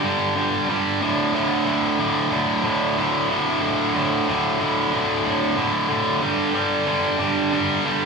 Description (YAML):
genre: rock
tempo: 92 BPM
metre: 4/4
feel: straight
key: unclear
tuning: A4 = 440 Hz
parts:
  - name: heavy high-gain guitar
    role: solo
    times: 0.0-8.1 s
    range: D2 to G3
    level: -19 LUFS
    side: right 1 dB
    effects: distortion, slapback echo, digital delay
room: moderate club reverb, RT60 0.9 s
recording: live gig heard through the venue's PA, club reverb, studio ambience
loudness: -19 LUFS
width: side -4 dB against mid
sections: 0.0-8.1 A section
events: none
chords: 0.0 G5; 1.0 D5; 6.2 G5